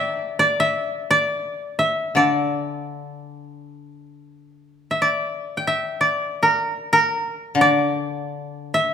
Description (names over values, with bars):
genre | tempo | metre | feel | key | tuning
japanese traditional, Japanese chamber music | free time | none | none | unclear | A4 = 435 Hz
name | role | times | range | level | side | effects
koto | melody | 0.0-8.9 s | Bb4 to A5 | -19 LUFS | equal | none
koto | accompaniment | 2.1-8.9 s | D3 | -22 LUFS | left 2 dB | none
room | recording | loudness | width
moderate recital hall reverb, RT60 1.6 s | minimal, uncompressed stereo recording | -19 LUFS | side -8 dB against mid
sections
0.0-8.9 A section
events
none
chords
none